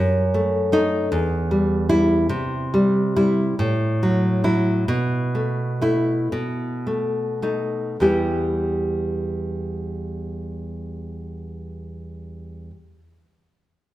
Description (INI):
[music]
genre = romantic piece for solo classical guitar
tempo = 34-53 BPM (dotted quarters)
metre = 6/8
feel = rubato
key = E minor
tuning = A4 = 440 Hz
[part]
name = nylon-string guitar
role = solo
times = 0.0-12.7 s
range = E2 to G4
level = -20 LUFS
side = equal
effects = none
[sound]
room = moderate recital hall reverb, RT60 1.6 s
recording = recorded in a church or concert hall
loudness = -19 LUFS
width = side -15 dB against mid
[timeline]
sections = 0.0-8.0 A section; 8.0-11.2 B section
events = slowing down 1.1-8.0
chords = 0.0 F#m6; 1.1 Em; 2.3 C; 3.6 F#m7/A; 4.9 B7sus4; 6.3 B7; 8.0 Em